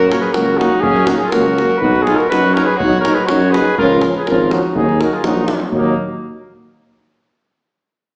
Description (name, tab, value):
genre	balkan folk, Balkan brass band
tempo	123 BPM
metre	2/4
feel	straight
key	Eb minor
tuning	A4 = 440 Hz
part	mellow flugelhorn	melody	0.0-6.0 s	Eb4 to Db5	-19 LUFS	equal	none
part	warm trumpet	second line	0.0-6.0 s	Bb3 to Bb4	-23 LUFS	equal	none
part	warm tuba	bass	0.0-5.9 s	Ab1 to Gb2	-21 LUFS	equal	none
part	mellow trombone	accompaniment	0.1-5.9 s	F3 to F#3	-26 LUFS	equal	none
part	warm French horn	accompaniment	0.1-5.9 s	Bb3 to D#4	-24 LUFS	equal	none
part	davul	percussion	0.1-5.9 s	none	-27 LUFS	equal	none
room	wet recital hall reverb, RT60 1.3 s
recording	heard from further back in the room, small speaker sound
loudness	-15 LUFS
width	mono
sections	0.0-5.7 A section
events	none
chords	0.0 Gb; 1.8 B; 3.8 Db; 4.7 Ebm